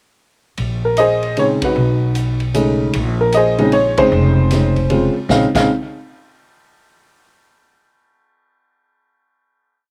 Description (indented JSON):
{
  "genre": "jazz piano trio",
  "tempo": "153 BPM",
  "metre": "3/4",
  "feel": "swing 65% on 8ths",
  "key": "Bb minor",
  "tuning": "A4 = 440 Hz",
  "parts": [
    { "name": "upright bass", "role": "bass", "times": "0.6-5.7 s", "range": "F1 to B1", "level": "-20 LUFS", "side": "equal", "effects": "none" },
    { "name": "swinging big-band drum kit", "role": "drums", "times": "0.6-5.6 s", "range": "crash cymbal, hi-hat, kick drum, ride cymbal, snare drum", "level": "-29 LUFS", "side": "equal", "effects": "none" },
    { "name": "warm upright piano", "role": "melody", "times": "0.8-5.7 s", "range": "Db3 to F5", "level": "-17 LUFS", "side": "equal", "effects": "none" }
  ],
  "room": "little or no reverb",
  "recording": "none",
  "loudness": "-16 LUFS",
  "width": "mono",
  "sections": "0.6-5.3 A section; 5.3-6.5 final chord",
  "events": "band accent 1.6, 3.9",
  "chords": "0.6 Bbm11; 1.8 B13; 2.9 Bbm11"
}